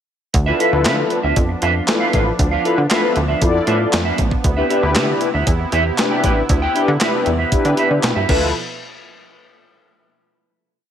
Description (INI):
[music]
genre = early-eighties boogie funk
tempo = 117 BPM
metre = 4/4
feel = straight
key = D dorian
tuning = A4 = 439 Hz
[part]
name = warm analog pad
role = sustained chords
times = 0.3-8.5 s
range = B2 to E4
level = -25 LUFS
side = right 2 dB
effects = chorus, tremolo
[part]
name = clean electric guitar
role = riff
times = 0.3-8.4 s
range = F4 to G5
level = -22 LUFS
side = right 4 dB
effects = wide subtle chorus
[part]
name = plucky analog bass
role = bass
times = 0.3-8.5 s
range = A1 to D3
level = -20 LUFS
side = equal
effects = none
[part]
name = crisp 8-bit digital drum machine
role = drums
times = 0.3-8.4 s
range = crash cymbal, handclaps, hi-hat, kick drum, snare drum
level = -19 LUFS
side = equal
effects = gated reverb
[part]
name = mellow synth brass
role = accompaniment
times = 0.5-8.5 s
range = D4 to D5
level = -20 LUFS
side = left 3 dB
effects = chorus
[sound]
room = little or no reverb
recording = none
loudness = -14 LUFS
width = side -9 dB against mid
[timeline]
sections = 0.3-8.5 verse; 8.5-10.6 final hit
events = none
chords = 0.3 Dm69; 4.4 Cmaj7; 8.3 Dm69; 8.5 N.C.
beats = | 0.34 0.85 1.37 1.88 | 2.39 2.90 3.42 3.93 | 4.44 4.96 5.47 5.98 | 6.50 7.01 7.52 8.03